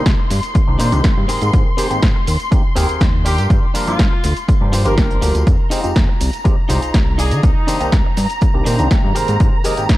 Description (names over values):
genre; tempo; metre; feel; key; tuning
filtered disco house; 122 BPM; 4/4; straight; F dorian; A4 = 440 Hz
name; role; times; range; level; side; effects
brilliant horn section; melody; 0.0-0.1, 3.3-7.9 s; Eb4 to Bb4; -26 LUFS; left 1 dB; sidechain pumping, digital delay
auto-wah clav; accompaniment; 0.0-9.9 s; Eb3 to G5; -24 LUFS; equal; overdrive, phaser, sidechain pumping
muted studio violin section; sustained chords; 0.0-10.0 s; Bb5 to C6; -25 LUFS; left 1 dB; sidechain pumping
fat analog bass; bass; 0.0-10.0 s; G1 to D3; -18 LUFS; equal; sidechain pumping
electronic kick drum; drums; 0.1-10.0 s; none; -15 LUFS; equal; overdrive
punchy analog drum machine; drums; 0.1-10.0 s; hi-hat, shaker, snare drum; -24 LUFS; equal; overdrive, sidechain pumping on hats, sidechain pumping on perc
tambourine; percussion; 0.1-10.0 s; none; -36 LUFS; equal; none
direct-recorded clean electric guitar; riff; 0.2-9.8 s; C4 to Eb5; -26 LUFS; equal; sidechain pumping
room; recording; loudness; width
little or no reverb; dark, warm production; -13 LUFS; side -16 dB against mid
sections
0.0-10.0 A section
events
none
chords
0.0 Cm9; 1.3 Abmaj9; 3.3 Gm7; 5.5 Fm7; 7.4 Cm9; 9.2 Abmaj9